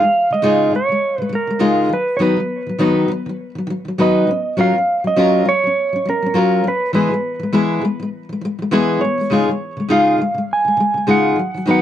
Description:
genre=pop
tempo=102 BPM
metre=4/4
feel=swing 60% on 16ths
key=Db mixolydian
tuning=A4 = 440 Hz
part: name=clean lap steel guitar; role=melody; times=0.0-11.8 s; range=Bb4 to Ab5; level=-18 LUFS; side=right 3 dB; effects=tape echo
part: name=fingerpicked steel-string acoustic guitar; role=accompaniment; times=0.0-11.8 s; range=Db3 to Cb5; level=-16 LUFS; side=left 2 dB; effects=none
room=moderate studio reverb, RT60 0.5 s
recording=dry, close 1970s-style studio recording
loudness=-15 LUFS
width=side -11 dB against mid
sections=0.0-11.8 A section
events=none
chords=0.0 Dbadd9; 1.9 Cb/Eb; 4.3 Gbmaj7; 6.9 E; 9.3 Dbadd9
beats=0.44 1.03 1.62 | 2.21 2.80 3.39 3.98 | 4.58 5.17 5.76 6.35 | 6.94 7.53 8.12 8.71 | 9.30 9.89 10.48 11.07 | 11.66

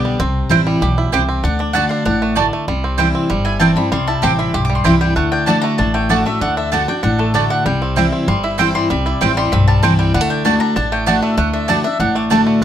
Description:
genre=bluegrass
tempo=193 BPM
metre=4/4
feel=straight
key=D mixolydian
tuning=A4 = 442 Hz
part: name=bluegrass banjo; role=melody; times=0.0-12.6 s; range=G3 to G4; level=-22 LUFS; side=right 4 dB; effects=none
part: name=picked steel-string acoustic guitar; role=accompaniment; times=0.0-12.6 s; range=G2 to G4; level=-17 LUFS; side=left 1 dB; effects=none
part: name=upright bass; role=bass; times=0.0-12.6 s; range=G1 to D2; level=-21 LUFS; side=equal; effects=none
part: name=mandolin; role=stabs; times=0.5-12.4 s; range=A3 to A5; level=-18 LUFS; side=right 9 dB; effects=none
part: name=mandolin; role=melody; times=1.4-12.2 s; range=A4 to D6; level=-21 LUFS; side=left 2 dB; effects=none
room=light reverb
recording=close, detailed microphones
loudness=-13 LUFS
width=side -10 dB against mid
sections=0.0-2.7 A section; 2.7-12.6 A section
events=mandolin solo 0.0-12.6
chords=0.2 C; 1.4 D; 2.7 C; 5.2 D; 7.7 C; 10.1 D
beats=| 0.20 0.51 0.82 1.13 | 1.44 1.75 2.06 2.37 | 2.68 2.99 3.30 3.61 | 3.92 4.23 4.54 4.85 | 5.16 5.47 5.79 6.10 | 6.41 6.72 7.03 7.34 | 7.66 7.97 8.28 8.59 | 8.90 9.21 9.52 9.83 | 10.14 10.45 10.76 11.07 | 11.38 11.69 12.00 12.31 | 12.62

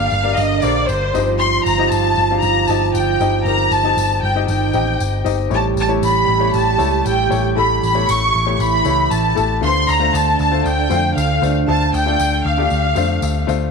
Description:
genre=piano-driven pop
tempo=117 BPM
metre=4/4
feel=straight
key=unclear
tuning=A4 = 440 Hz
part: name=rich studio violin section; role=melody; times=0.0-13.5 s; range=C5 to C#6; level=-18 LUFS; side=equal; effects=none
part: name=mellow French horn section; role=second line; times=0.0-13.4 s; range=D3 to G4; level=-22 LUFS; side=right 11 dB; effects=none
part: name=warm grand piano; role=accompaniment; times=0.0-13.7 s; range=G2 to F5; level=-22 LUFS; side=left 14 dB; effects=none
part: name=vintage muted picked electric bass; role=bass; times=0.0-13.7 s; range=G1 to F2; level=-20 LUFS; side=equal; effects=none
part: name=tambourine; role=percussion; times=0.1-13.6 s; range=none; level=-35 LUFS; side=left 15 dB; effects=none
room=moderate plate reverb, RT60 2.9 s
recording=1960s-style stereo with parts hard left and right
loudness=-14 LUFS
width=side -4 dB against mid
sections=0.0-13.7 A section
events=none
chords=0.0 Gm; 1.1 Cm/G; 5.5 A7; 9.6 Dm7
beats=0.38 0.89 | 1.41 1.92 2.43 2.95 | 3.46 3.98 4.49 5.00 | 5.52 6.03 6.54 7.06 | 7.57 8.09 8.60 9.11 | 9.63 10.14 10.65 11.17 | 11.68 12.20 12.71 13.22

